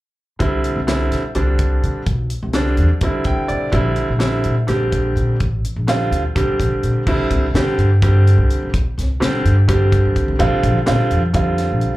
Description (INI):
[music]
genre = electric jazz fusion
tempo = 252 BPM (eighths)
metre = 7/8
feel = straight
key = C major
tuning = A4 = 437 Hz
[part]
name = bright grand piano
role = accompaniment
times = 0.4-12.0 s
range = D3 to G5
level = -19 LUFS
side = right 1 dB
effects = plate reverb, slapback echo
[part]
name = upright bass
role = bass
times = 0.4-12.0 s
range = A1 to C3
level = -17 LUFS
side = equal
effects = none
[part]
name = tight funk drum kit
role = drums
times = 0.4-11.9 s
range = crash cymbal, hi-hat, kick drum, snare drum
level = -21 LUFS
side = equal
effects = none
[sound]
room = light reverb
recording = live gig heard through the venue's PA, club reverb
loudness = -15 LUFS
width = side -17 dB against mid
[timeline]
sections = 0.4-7.1 A section; 7.1-12.0 B section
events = grand piano fill 3.0-3.7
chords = 0.4 Cadd9; 3.7 Bbadd9; 7.1 Csus2; 10.4 Bbadd9